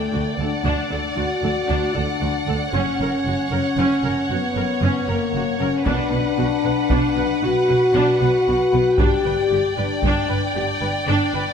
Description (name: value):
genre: cinematic, epic orchestral film score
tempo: 77 BPM (dotted quarters)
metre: 12/8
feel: straight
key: B minor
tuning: A4 = 440 Hz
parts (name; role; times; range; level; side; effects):
- warm symphonic violin section; melody; 0.0-11.5 s; F#5 to G5; -30 LUFS; left 2 dB; none
- rich symphonic violin section; second line; 0.0-11.5 s; B4 to D5; -27 LUFS; left 1 dB; none
- mellow French horn section; sustained chords; 0.0-11.5 s; A3 to G4; -21 LUFS; left 3 dB; none
- rich symphonic viola section; accompaniment; 0.1-11.4 s; C#4 to B4; -27 LUFS; right 2 dB; none
- warm symphonic cello section; bass; 0.1-11.4 s; D2 to B2; -27 LUFS; right 3 dB; none
- warm symphonic double bass section; bass; 0.1-11.4 s; F#1 to D2; -26 LUFS; right 3 dB; none
- taiko ensemble; drums; 5.9-10.5 s; none; -23 LUFS; equal; none
room: wet scoring stage reverb, RT60 1.7 s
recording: none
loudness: -18 LUFS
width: side -7 dB against mid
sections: 0.0-11.5 A section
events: none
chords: 0.0 D; 2.7 F#; 5.9 Bm; 9.0 G